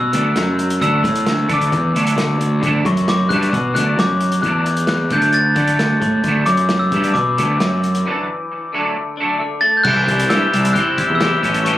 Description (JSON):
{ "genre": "indie rock", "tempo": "133 BPM", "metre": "4/4", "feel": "straight", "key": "D major", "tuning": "A4 = 440 Hz", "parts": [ { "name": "glockenspiel with hard plastic mallets", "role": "melody", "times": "0.0-11.8 s", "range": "C#6 to A6", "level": "-19 LUFS", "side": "left 2 dB", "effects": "none" }, { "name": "raw garage guitar", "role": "riff", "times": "0.0-11.8 s", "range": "D3 to G4", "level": "-25 LUFS", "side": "left 5 dB", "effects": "overdrive, spring reverb" }, { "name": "fuzz picked electric bass", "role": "bass", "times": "0.0-11.8 s", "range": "A1 to D3", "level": "-18 LUFS", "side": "right 1 dB", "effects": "overdrive" }, { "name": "biting overdriven guitar", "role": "riff", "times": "0.1-11.8 s", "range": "A2 to E4", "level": "-22 LUFS", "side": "right 4 dB", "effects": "ensemble chorus" }, { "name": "vintage drum kit", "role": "drums", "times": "0.1-11.8 s", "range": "crash cymbal, hi-hat, kick drum, snare drum", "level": "-24 LUFS", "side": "equal", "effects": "none" } ], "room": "little or no reverb", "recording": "recorded on a phone in the room, club reverb", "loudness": "-14 LUFS", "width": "side -13 dB against mid", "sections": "0.0-9.9 A section; 9.9-11.8 B section", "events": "break 8.0-9.9", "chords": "0.0 D; 9.9 C", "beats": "0.36 | 0.81 1.26 1.72 2.17 | 2.62 3.07 3.52 3.98 | 4.43 4.88 5.33 5.79 | 6.24 6.69 7.14 7.59 | 8.05 8.50 8.95 9.40 | 9.85 10.30 10.76 11.21 | 11.66" }